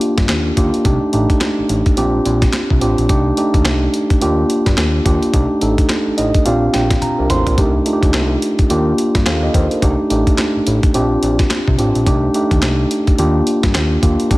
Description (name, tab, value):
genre	R&B, new jack swing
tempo	107 BPM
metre	4/4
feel	swing 60% on 16ths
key	C dorian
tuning	A4 = 437 Hz
part	mellow tine electric piano	accompaniment	0.0-14.4 s	A3 to C6	-16 LUFS	equal	none
part	breakbeat sampler-style drum kit	drums	0.0-14.4 s	handclaps, hi-hat, kick drum, snare drum, toms	-17 LUFS	equal	none
part	fat analog bass	bass	0.2-14.4 s	A1 to G2	-18 LUFS	equal	none
room	light reverb, digital ambience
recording	none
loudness	-13 LUFS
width	side -19 dB against mid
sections	0.0-14.4 A section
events	tine electric piano fill 5.9-7.6; drum fill 7.0-7.6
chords	0.0 Ebmaj7; 0.9 Cm69; 2.0 Bb6; 3.1 Cm69; 4.2 Ebmaj7; 5.3 Cm69; 6.5 Bb6; 7.6 Cm69; 8.7 Ebmaj7; 9.8 Cm69; 10.9 Bb6; 12.1 Cm69; 13.2 Ebmaj7